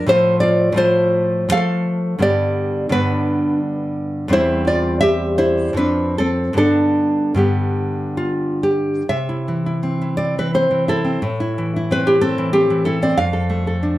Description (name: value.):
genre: romantic piece for solo classical guitar.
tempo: 62-94 BPM.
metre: 3/4.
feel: rubato.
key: C major.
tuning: A4 = 442 Hz.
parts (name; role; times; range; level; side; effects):
nylon-string guitar; solo; 0.0-14.0 s; E2 to F5; -16 LUFS; equal; slapback echo.
room: light reverb.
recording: dark, warm production.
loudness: -16 LUFS.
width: side -15 dB against mid.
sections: 0.0-9.1 A section; 9.1-14.0 B section.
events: none.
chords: 0.1 F/A; 2.2 G; 4.3 C/E; 5.8 F; 6.6 G; 9.1 C; 11.2 Am; 13.2 Dm/F.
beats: | 0.10 0.77 1.53 | 2.22 2.92 3.62 | 4.32 5.02 5.77 | 6.56 7.37 8.17 | 9.07 9.82 10.53 | 11.20 11.88 12.52 | 13.17 13.83.